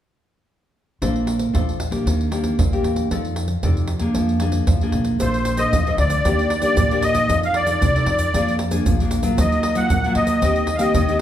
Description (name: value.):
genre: samba and choro.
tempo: 115 BPM.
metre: 4/4.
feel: straight.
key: Bb major.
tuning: A4 = 439 Hz.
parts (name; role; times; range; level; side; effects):
nylon-string guitar; accompaniment; 1.0-11.2 s; Bb2 to D5; -22 LUFS; equal; none.
upright bass; bass; 1.0-11.2 s; Bb1 to F2; -23 LUFS; equal; none.
surdo, pandeiro and egg shaker; percussion; 1.0-11.2 s; none; -23 LUFS; right 1 dB; none.
musette accordion; melody; 5.2-11.2 s; C5 to Gb5; -20 LUFS; left 1 dB; none.
room: wet large studio reverb, RT60 1.1 s.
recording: band playing live in one room.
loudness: -17 LUFS.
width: side -11 dB against mid.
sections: 1.0-5.2 A section; 5.2-11.2 B section.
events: none.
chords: 1.0 Bbmaj9; 2.1 Ebmaj7; 3.1 F6; 4.2 Bb7/F; 5.2 Bbmaj9; 6.2 Ebmaj7; 7.3 F6; 8.3 Bb7/F; 9.4 Ebmadd9; 10.4 Cm7/Eb.